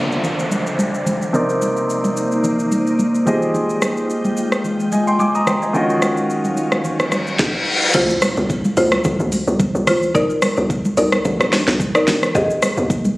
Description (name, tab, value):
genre	amapiano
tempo	109 BPM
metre	4/4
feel	swing 55% on 16ths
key	D phrygian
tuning	A4 = 440 Hz
part	clear concert grand piano	accompaniment	0.0-7.4 s	C3 to Eb6	-20 LUFS	equal	low-pass filter
part	glassy FM pad	sustained chords	0.0-7.4 s	F3 to G5	-23 LUFS	equal	ensemble chorus, built-in reverb, sidechain pumping, low-pass filter
part	downlifter, reverse cymbal and impact	sound effects	0.0-3.5, 7.1-10.1 s	none	-22 LUFS	left 1 dB	none
part	afro-pop drum kit	drums	0.1-13.2 s	crash cymbal, hi-hat, kick drum, rim click, shaker, snare drum	-20 LUFS	equal	none
part	congas	percussion	0.2-13.2 s	none	-23 LUFS	equal	none
part	buzzing marimba with medium mallets	stabs	7.9-13.1 s	Eb4 to Eb5	-19 LUFS	equal	ping-pong delay
part	hollow log drum bass	bass	7.9-13.2 s	Bb1 to F2	-22 LUFS	equal	none
room	light reverb, digital ambience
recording	recorded on a phone in the room, studio reverb, compression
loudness	-15 LUFS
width	side -20 dB against mid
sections	0.0-7.9 A section; 7.9-13.2 B section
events	filter sweep 0.0-7.9; reverse cymbal 7.1-7.9; drop 7.9-13.2; impact 7.9-10.1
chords	0.0 Dm9; 1.3 Cm9; 3.3 Fm9; 5.7 Ebm9; 7.9 Dm9; 10.1 Cm9; 12.1 Fm9